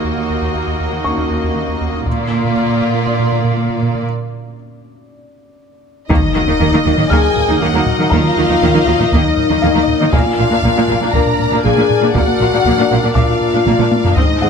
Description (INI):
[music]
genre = cinematic, hybrid orchestral and electronic film score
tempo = 119 BPM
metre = 4/4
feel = straight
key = unclear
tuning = A4 = 440 Hz
[part]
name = warm symphonic violin section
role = melody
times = 0.0-14.5 s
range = D5 to Eb5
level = -24 LUFS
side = left 4 dB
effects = none
[part]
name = rich studio violin section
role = second line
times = 0.0-14.5 s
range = F4 to Bb5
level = -21 LUFS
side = left 2 dB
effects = none
[part]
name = rich symphonic viola section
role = accompaniment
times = 0.0-14.5 s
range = Bb3 to Ab4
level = -22 LUFS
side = right 1 dB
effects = none
[part]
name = hollow soft pad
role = sustained chords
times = 0.0-14.5 s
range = D3 to C5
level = -23 LUFS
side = equal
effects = chorus
[part]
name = round analog bass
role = riff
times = 0.0-14.5 s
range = Eb2 to Bb3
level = -22 LUFS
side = right 2 dB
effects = none
[part]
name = rich chamber cello section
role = bass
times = 0.0-14.5 s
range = Eb2 to Eb3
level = -20 LUFS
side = right 3 dB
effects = none
[part]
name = felt-muted upright piano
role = texture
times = 0.0-14.5 s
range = Db4 to F6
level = -26 LUFS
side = left 3 dB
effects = tape echo
[part]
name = taiko ensemble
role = drums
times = 2.1-3.0, 6.1-14.5 s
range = none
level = -19 LUFS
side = left 1 dB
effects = none
[part]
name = mellow French horn section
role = sustained chords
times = 6.1-14.5 s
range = Eb4 to Bb4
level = -17 LUFS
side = left 6 dB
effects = none
[part]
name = warm symphonic double bass section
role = bass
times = 6.1-14.5 s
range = Ab1 to Eb2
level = -21 LUFS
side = right 4 dB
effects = none
[part]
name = impact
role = sound effects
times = 6.1-8.1 s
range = none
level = -24 LUFS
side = equal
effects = none
[sound]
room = light reverb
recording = close, detailed microphones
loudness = -12 LUFS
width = side -6 dB against mid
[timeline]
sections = 0.0-6.1 A section; 6.1-14.5 B section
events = break 4.1-6.1; drum fill 5.6-6.1, 13.7-14.2; impact 6.1-8.1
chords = 0.0 Ebm; 2.1 Bb; 6.1 Ebm; 10.1 Bb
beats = | 0.05 0.55 1.05 1.56 | 2.06 2.57 3.07 3.58 | 4.08 4.58 5.09 5.59 | 6.10 6.60 7.11 7.61 | 8.11 8.62 9.12 9.63 | 10.13 10.63 11.14 11.64 | 12.15 12.65 13.15 13.66 | 14.16